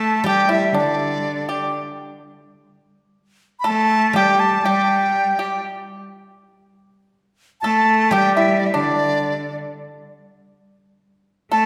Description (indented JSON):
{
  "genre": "chinese traditional, Chinese chamber ensemble",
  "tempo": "62 BPM",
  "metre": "2/4",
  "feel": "rubato",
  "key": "unclear",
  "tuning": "A4 = 440 Hz",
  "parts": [
    { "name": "bright reedy large dizi", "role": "melody", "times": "0.0-11.7 s", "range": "D5 to B5", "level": "-22 LUFS", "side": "equal", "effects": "none" },
    { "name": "clear cello", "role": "second line", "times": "0.0-11.7 s", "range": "D3 to A3", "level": "-25 LUFS", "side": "equal", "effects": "none" },
    { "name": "pipa", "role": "second line", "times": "0.0-11.7 s", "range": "D4 to A4", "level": "-25 LUFS", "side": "equal", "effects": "none" },
    { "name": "guzheng", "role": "accompaniment", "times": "0.2-11.0 s", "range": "G3", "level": "-34 LUFS", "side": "equal", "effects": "none" }
  ],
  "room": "wet concert hall reverb, RT60 1.8 s",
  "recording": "recorded in a church or concert hall",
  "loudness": "-18 LUFS",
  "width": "mono",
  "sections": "0.0-11.7 A section",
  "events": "none",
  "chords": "none",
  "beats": "| 0.27 1.24 | 2.21 3.17 | 4.15 5.14 | 6.15 7.14 | 8.12 9.08 | 10.04 11.01"
}